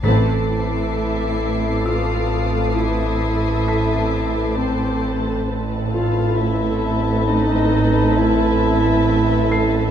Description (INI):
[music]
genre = cinematic, suspense film score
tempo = 66 BPM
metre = 3/4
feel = straight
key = A minor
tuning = A4 = 439 Hz
[part]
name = muted studio violin section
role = second line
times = 0.0-9.9 s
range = B4 to A5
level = -26 LUFS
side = left 1 dB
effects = none
[part]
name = muted symphonic viola section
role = accompaniment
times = 0.0-9.9 s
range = C4 to A4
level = -25 LUFS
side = right 1 dB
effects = none
[part]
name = muted symphonic cello section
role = bass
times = 0.0-9.9 s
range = A2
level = -24 LUFS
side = right 3 dB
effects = none
[part]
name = muted symphonic double bass section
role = bass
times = 0.0-9.9 s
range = A1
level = -25 LUFS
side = right 3 dB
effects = none
[part]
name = deep rumbling drone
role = drone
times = 0.0-9.9 s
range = A1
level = -26 LUFS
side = left 1 dB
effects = built-in reverb
[part]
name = timpani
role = percussion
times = 0.0-1.4 s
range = A2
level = -24 LUFS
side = left 1 dB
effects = none
[part]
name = muted studio violin section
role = texture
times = 0.0-9.9 s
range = A5 to C7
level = -32 LUFS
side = left 6 dB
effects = none
[part]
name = warm concert grand piano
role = texture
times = 0.0-9.9 s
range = A5 to C7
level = -32 LUFS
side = left 1 dB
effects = none
[part]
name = muted symphonic violin section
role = melody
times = 0.5-9.9 s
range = C5 to F5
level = -28 LUFS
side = left 4 dB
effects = none
[part]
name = mellow clarinet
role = second line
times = 0.5-9.9 s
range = C4 to F4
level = -22 LUFS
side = right 1 dB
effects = none
[sound]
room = moderate scoring stage reverb, RT60 1.5 s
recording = dark, warm production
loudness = -16 LUFS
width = side -9 dB against mid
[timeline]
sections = 0.0-9.9 A section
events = band accent 0.0-0.9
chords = 0.0 Amadd9